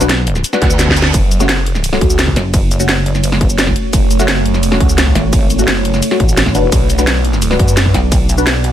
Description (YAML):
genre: dark technical drum and bass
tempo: 172 BPM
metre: 4/4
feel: straight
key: F# minor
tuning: A4 = 441 Hz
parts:
  - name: filtered dub chord stab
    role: stabs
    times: 0.0-8.4 s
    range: A3 to B4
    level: -20 LUFS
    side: left 2 dB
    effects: phaser, wide subtle chorus, tape echo
  - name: pulsing pluck wobble bass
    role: bass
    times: 0.0-8.7 s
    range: F#1 to D2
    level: -15 LUFS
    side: equal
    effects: chorus
  - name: drum and bass drum kit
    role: drums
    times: 0.0-8.7 s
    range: hi-hat, ride cymbal, shaker, snare drum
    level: -16 LUFS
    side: equal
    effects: none
  - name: reverse cymbal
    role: sound effects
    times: 0.6-1.1 s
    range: none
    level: -24 LUFS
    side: right 8 dB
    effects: none
  - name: electronic kick drum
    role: drums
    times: 0.6-8.2 s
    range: none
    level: -15 LUFS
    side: equal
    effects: distortion
  - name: deep dark ambient pad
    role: sustained chords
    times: 2.5-8.7 s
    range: A3 to D5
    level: -21 LUFS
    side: right 2 dB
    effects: chorus, built-in reverb, sidechain pumping
  - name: phased detuned saw bass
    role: bass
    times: 1.1-7.9 s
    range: F#1 to F#2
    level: -15 LUFS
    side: equal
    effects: phaser, overdrive
room: digital ambience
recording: none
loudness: -10 LUFS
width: side -11 dB against mid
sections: 0.0-8.7 A section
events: reverse cymbal 0.6-1.1; drum fill 0.8-1.1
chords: 0.0 Bm; 1.1 F#m; 6.7 Bm